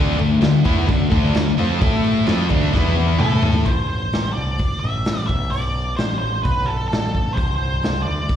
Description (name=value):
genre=garage rock duo or trio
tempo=130 BPM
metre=4/4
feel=straight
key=A minor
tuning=A4 = 442 Hz
part: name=thick fuzz guitar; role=riff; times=0.0-3.7 s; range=D3 to A4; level=-19 LUFS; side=left 2 dB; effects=distortion, slapback echo
part: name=growling picked electric bass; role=bass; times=0.0-8.3 s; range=A1 to A2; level=-22 LUFS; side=equal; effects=overdrive, tube saturation
part: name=raw garage drum kit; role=drums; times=0.2-8.4 s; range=crash cymbal, hi-hat, kick drum, snare drum, toms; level=-21 LUFS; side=equal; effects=none
part: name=octave-fuzz lead guitar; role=melody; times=3.2-8.4 s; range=A4 to E5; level=-25 LUFS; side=equal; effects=distortion, slapback echo
room=light reverb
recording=live gig heard through the venue's PA, club reverb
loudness=-17 LUFS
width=side -10 dB against mid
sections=0.0-3.7 A section; 3.7-8.4 B section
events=drum fill 2.7-3.7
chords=0.0 D5; 1.8 A5; 2.3 D5; 2.7 E5; 3.2 A5; 3.7 Am; 5.3 Bmadd11; 6.0 Am; 6.4 Asus2/B; 6.9 N.C.; 7.4 Csus2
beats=0.43 0.89 1.36 | 1.82 2.28 2.74 3.21 | 3.67 4.13 4.59 5.06 | 5.52 5.98 6.45 6.91 | 7.37 7.83 8.29